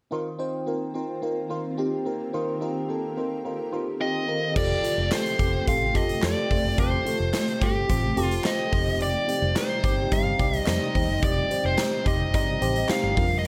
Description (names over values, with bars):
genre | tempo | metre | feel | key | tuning
1980s-style pop | 108 BPM | 4/4 | straight | F mixolydian | A4 = 442 Hz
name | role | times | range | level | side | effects
FM electric piano with soft pad layer | accompaniment | 0.1-13.5 s | C4 to Eb5 | -31 LUFS | equal | chorus, phaser
granular cloud pad | sustained chords | 0.8-13.5 s | C3 to Bb4 | -38 LUFS | equal | built-in reverb
electric guitar with an envelope filter | riff | 0.1-13.5 s | Eb3 to G4 | -38 LUFS | equal | lush chorus
dark smooth lead guitar | melody | 4.0-13.5 s | G4 to F5 | -29 LUFS | equal | overdrive
vintage muted fingered electric bass | bass | 4.6-13.5 s | F1 to F2 | -31 LUFS | equal | none
big rock drum kit | drums | 4.6-13.5 s | crash cymbal, hi-hat, kick drum, snare drum | -30 LUFS | equal | none
group handclap | percussion | 5.1-13.0 s | none | -41 LUFS | equal | none
room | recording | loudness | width
light reverb, small room ambience | none | -25 LUFS | mono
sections
0.1-4.6 A section; 4.6-13.5 B section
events
none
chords
0.1 F7sus4; 4.6 Fadd9; 8.7 Cm/F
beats
| 0.12 0.67 1.23 1.78 | 2.34 2.89 3.45 4.00 | 4.56 5.12 5.67 6.23 | 6.78 7.34 7.89 8.45 | 9.00 9.56 10.12 10.67 | 11.23 11.78 12.34 12.89 | 13.45